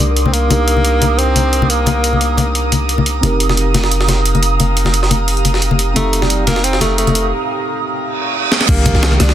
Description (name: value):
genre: liquid drum and bass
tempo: 176 BPM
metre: 4/4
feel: straight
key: unclear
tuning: A4 = 443 Hz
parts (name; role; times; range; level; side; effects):
- mellow tenor saxophone; melody; 0.0-2.7, 6.0-9.3 s; G3 to D4; -20 LUFS; equal; digital delay
- mellow tine electric piano; accompaniment; 0.0-9.3 s; Eb3 to Bb5; -23 LUFS; right 2 dB; digital delay
- airy breathy pad; sustained chords; 0.0-9.3 s; G4 to Eb6; -21 LUFS; right 3 dB; chorus, phaser
- long sustained 808-style bass; bass; 0.0-9.3 s; F1 to C2; -16 LUFS; equal; none
- breakbeat sampler-style drum kit; drums; 0.0-9.3 s; crash cymbal, hi-hat, rim click, snare drum; -20 LUFS; left 1 dB; none
- congas; percussion; 0.0-9.3 s; none; -19 LUFS; left 4 dB; none
- jungle sampler-style drum kit; drums; 3.2-9.3 s; hi-hat, snare drum; -21 LUFS; right 2 dB; high-pass filter on hats, high-pass filter on snare
- reverse cymbal and downlifter; sound effects; 8.1-9.3 s; none; -19 LUFS; right 7 dB; none
- electronic kick drum; drums; 8.7-8.9 s; none; -16 LUFS; equal; none
room: little or no reverb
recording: dense, heavily limited modern master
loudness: -12 LUFS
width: side -11 dB against mid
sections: 0.0-8.7 A section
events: break 7.3-8.7; reverse cymbal 8.1-8.7; drum fill 8.5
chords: 0.0 Cm9; 3.2 F9sus4; 8.7 Cm9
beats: 0.17 | 0.51 0.85 1.19 1.53 | 1.87 2.21 2.55 2.89 | 3.23 3.57 3.92 4.25 | 4.60 4.94 5.28 5.62 | 5.96 6.30 6.64 6.98 | 7.32 7.67 8.01 8.35 | 8.69 9.03